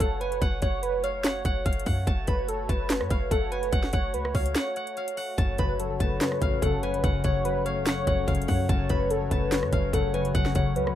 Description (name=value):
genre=hip hop, trap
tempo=145 BPM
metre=4/4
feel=half-time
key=F# harmonic minor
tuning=A4 = 440 Hz
part: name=steel-string zither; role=melody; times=0.0-11.0 s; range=E#5 to B5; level=-36 LUFS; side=right 1 dB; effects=low-pass filter
part: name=warm velvety synth lead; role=second line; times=0.0-11.0 s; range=A4 to C#5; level=-30 LUFS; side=right 1 dB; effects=chorus, tape echo
part: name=concert harp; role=accompaniment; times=0.0-1.1, 5.4-11.0 s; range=F#2 to C#4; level=-29 LUFS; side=left 4 dB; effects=low-pass filter
part: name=warm analog pad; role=sustained chords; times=0.0-11.0 s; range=A3 to C#5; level=-38 LUFS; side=right 2 dB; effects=chorus
part: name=clean 808-style bass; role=bass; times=0.0-11.0 s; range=E#1 to F#2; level=-31 LUFS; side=equal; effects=none
part: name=trap drum kit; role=drums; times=0.0-11.0 s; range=handclaps, hi-hat, kick drum, rim click, snare drum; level=-27 LUFS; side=equal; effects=none
room=light reverb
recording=rough home demo mix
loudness=-24 LUFS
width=side -11 dB against mid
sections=0.0-11.0 A section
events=break 4.6-5.4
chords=0.0 F#m